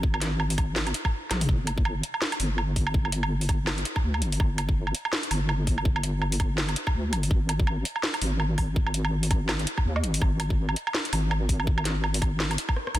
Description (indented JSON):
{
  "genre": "half-time drum and bass",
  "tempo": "165 BPM",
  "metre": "4/4",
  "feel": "swing 58% on 16ths, half-time",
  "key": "unclear",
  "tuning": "A4 = 440 Hz",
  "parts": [
    { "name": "deep soft wobble bass", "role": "bass", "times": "0.0-13.0 s", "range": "G1 to Eb2", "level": "-27 LUFS", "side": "equal", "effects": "chorus" },
    { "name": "electronic kick drum", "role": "drums", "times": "0.0-12.7 s", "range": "none", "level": "-25 LUFS", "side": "equal", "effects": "none" },
    { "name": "drum and bass drum kit", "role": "drums", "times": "0.1-13.0 s", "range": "hi-hat, rim click, snare drum, toms, woodblock", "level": "-29 LUFS", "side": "right 1 dB", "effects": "none" }
  ],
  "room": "little or no reverb",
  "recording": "dense, heavily limited modern master",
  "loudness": "-24 LUFS",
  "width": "side -14 dB against mid",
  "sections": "0.0-13.0 A section",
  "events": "drum fill 1.3, 12.8",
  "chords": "none"
}